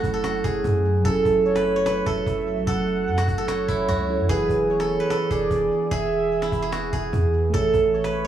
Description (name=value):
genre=hip hop, trap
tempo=148 BPM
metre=4/4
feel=half-time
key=F# minor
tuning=A4 = 440 Hz
part: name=steel-string zither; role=melody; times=0.0-8.3 s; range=E4 to C#5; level=-24 LUFS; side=right 2 dB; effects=tape echo
part: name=warm velvety synth lead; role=second line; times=0.0-8.3 s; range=A4 to F#5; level=-27 LUFS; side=right 2 dB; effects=chorus, tape echo
part: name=mellow tine electric piano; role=accompaniment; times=0.0-8.3 s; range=E3 to E5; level=-29 LUFS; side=right 1 dB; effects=none
part: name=warbly tape-like pad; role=sustained chords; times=0.0-8.3 s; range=E3 to G#4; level=-30 LUFS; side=right 2 dB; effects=chorus, built-in reverb
part: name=clean 808-style bass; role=bass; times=0.0-8.3 s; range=E1 to F#2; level=-27 LUFS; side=equal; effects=transformer saturation
part: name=cajon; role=drums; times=0.0-8.2 s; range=none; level=-31 LUFS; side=right 1 dB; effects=none
room=digital ambience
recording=dry, gritty hardware recording, small room ambience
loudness=-20 LUFS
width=side -10 dB against mid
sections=0.0-8.3 A section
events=none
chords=0.0 F#m7; 4.3 E; 7.5 A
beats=0.24 0.64 | 1.05 1.45 1.86 2.27 | 2.67 3.08 3.48 3.89 | 4.29 4.70 5.10 5.51 | 5.91 6.32 6.72 7.13 | 7.54 7.94